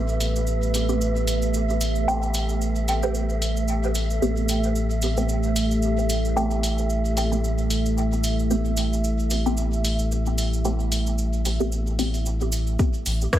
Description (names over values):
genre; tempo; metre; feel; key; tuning
dub techno; 112 BPM; 4/4; swing 56% on 16ths; A minor; A4 = 442 Hz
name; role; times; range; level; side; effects
deep dark ambient pad; sustained chords; 0.0-13.4 s; A3 to E5; -28 LUFS; right 1 dB; chorus, built-in reverb, sidechain pumping
filtered dub chord stab; stabs; 0.0-13.1 s; A3 to G4; -29 LUFS; equal; phaser, sidechain pumping, dub echo
warm sub bass; bass; 0.0-13.3 s; A1; -24 LUFS; equal; sidechain pumping
wind-like tuned noise texture; texture; 0.0-12.8 s; E5; -34 LUFS; right 5 dB; built-in reverb, sidechain pumping
cabasa; percussion; 0.1-13.4 s; none; -34 LUFS; right 3 dB; none
punchy analog drum machine; drums; 0.2-13.4 s; hi-hat, rim click; -29 LUFS; equal; overdrive, low-pass filter on hats, low-pass filter on snare, low-pass filter on room
electronic kick drum; drums; 12.8-13.4 s; none; -21 LUFS; equal; none
room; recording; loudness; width
light reverb, digital ambience; echo-heavy mix; -21 LUFS; side -12 dB against mid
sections
0.0-12.8 A section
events
filter sweep on synth stab 0.0-12.8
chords
0.0 Am9